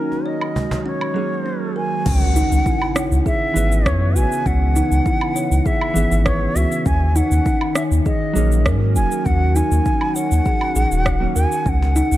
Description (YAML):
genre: organic downtempo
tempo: 100 BPM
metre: 4/4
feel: straight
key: C# dorian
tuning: A4 = 440 Hz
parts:
  - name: bright bansuri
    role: melody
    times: 0.0-12.2 s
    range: A#4 to G#5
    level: -24 LUFS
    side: right 1 dB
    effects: tape echo
  - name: mellow electric guitar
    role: accompaniment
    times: 0.0-11.3 s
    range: E3 to E5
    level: -27 LUFS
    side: right 3 dB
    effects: spring reverb, sidechain pumping, tape echo
  - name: warbly tape-like pad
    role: sustained chords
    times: 0.0-12.2 s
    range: C#3 to B4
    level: -28 LUFS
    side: left 2 dB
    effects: chorus, built-in reverb, sidechain pumping
  - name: kalimba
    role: arpeggios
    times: 0.0-12.2 s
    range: G#3 to C#5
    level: -24 LUFS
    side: left 1 dB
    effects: tape echo
  - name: cajon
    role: percussion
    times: 0.1-0.8, 11.8-11.9 s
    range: none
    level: -27 LUFS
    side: right 1 dB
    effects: none
  - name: organic electronic drum kit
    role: drums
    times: 0.4-12.2 s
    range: crash cymbal, rim click, shaker, woodblock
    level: -27 LUFS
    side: right 1 dB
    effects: overdrive
  - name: warm sub bass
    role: bass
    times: 2.1-12.2 s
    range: D#1 to G#2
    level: -17 LUFS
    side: equal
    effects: none
  - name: electronic kick drum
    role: drums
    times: 2.1-11.8 s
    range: none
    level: -22 LUFS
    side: equal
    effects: none
  - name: impact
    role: sound effects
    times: 2.1-4.5 s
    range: none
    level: -28 LUFS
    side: equal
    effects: none
room: light reverb, digital ambience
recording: dark, warm production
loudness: -16 LUFS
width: side -14 dB against mid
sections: 0.0-2.1 A section; 2.1-12.2 B section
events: filter sweep on drum 0.0-2.1; impact 2.1-4.5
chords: 0.0 D#m7; 2.1 C#m7; 6.9 D#m7; 11.7 C#7sus2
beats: 0.26 0.86 1.46 | 2.06 2.66 3.26 3.86 | 4.46 5.06 5.66 6.26 | 6.86 7.46 8.06 8.66 | 9.26 9.86 10.46 11.06 | 11.66